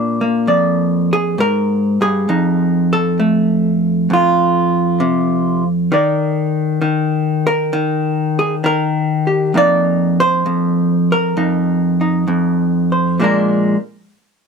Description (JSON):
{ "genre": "solo jazz", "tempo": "66 BPM", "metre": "4/4", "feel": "swing 69% on 8ths", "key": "Bb major", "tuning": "A4 = 438 Hz", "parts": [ { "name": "vintage hollow-body jazz guitar", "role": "solo", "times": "0.0-13.8 s", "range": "F2 to D5", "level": "-13 LUFS", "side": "equal", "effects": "none" } ], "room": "little or no reverb", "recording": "close, detailed microphones", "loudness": "-13 LUFS", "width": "side -5 dB against mid", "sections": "0.0-5.9 A section; 5.9-13.2 B section; 13.2-14.5 C section", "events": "hollow-body jazz guitar solo 0.0-5.9", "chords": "0.0 Bb7; 2.3 F7; 5.9 Ebmaj7(no3); 9.5 F7sus4; 13.2 Bb7" }